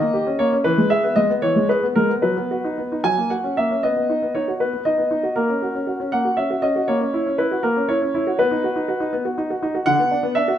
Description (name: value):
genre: classical-period piano sonatina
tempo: 73-82 BPM (dotted quarters)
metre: 6/8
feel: rubato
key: B major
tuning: A4 = 439 Hz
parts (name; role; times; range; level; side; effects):
- clear grand piano; solo; 0.0-10.6 s; D3 to G#5; -18 LUFS; equal; none
room: moderate recital hall reverb, RT60 1.5 s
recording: close, detailed microphones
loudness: -18 LUFS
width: side -10 dB against mid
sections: 0.0-3.8 A section; 3.8-10.6 B section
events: none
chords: 0.0 D#7; 0.6 E; 2.2 B/F#; 3.0 F#; 3.8 B; 5.4 F#/A#; 6.9 F#7/A#; 8.4 B; 9.9 Bm/D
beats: | 0.65 1.43 | 2.23 3.04 | 3.84 4.60 | 5.37 6.13 | 6.88 7.64 | 8.39 9.12 | 9.87